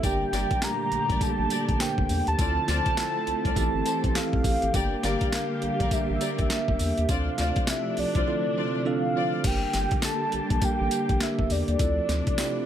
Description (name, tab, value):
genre	R&B, new jack swing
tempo	102 BPM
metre	4/4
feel	swing 61% on 16ths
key	unclear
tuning	A4 = 440 Hz
part	warm velvety synth lead	melody	0.0-12.7 s	D5 to Bb5	-29 LUFS	equal	chorus
part	bell-like tine electric piano	accompaniment	0.0-12.7 s	D3 to C5	-31 LUFS	right 4 dB	phaser
part	dark studio string section	sustained chords	0.0-12.7 s	Bb2 to G4	-32 LUFS	left 2 dB	none
part	warm studio string section	stabs	0.0-9.3 s	F4 to D5	-36 LUFS	left 2 dB	none
part	round analog bass	bass	0.0-12.2 s	G1 to E2	-29 LUFS	equal	none
part	boom bap sampler-style drum kit	drums	0.0-12.6 s	crash cymbal, handclaps, hi-hat, kick drum, snare drum, tambourine	-28 LUFS	equal	overdrive
room	light reverb, digital ambience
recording	none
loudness	-23 LUFS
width	side -10 dB against mid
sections	0.0-9.4 A section; 9.4-12.7 A section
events	none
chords	0.0 Gm; 2.4 Dm7; 3.6 Am7; 4.7 Gm; 7.1 Dm7; 9.4 Gm; 11.8 Dm7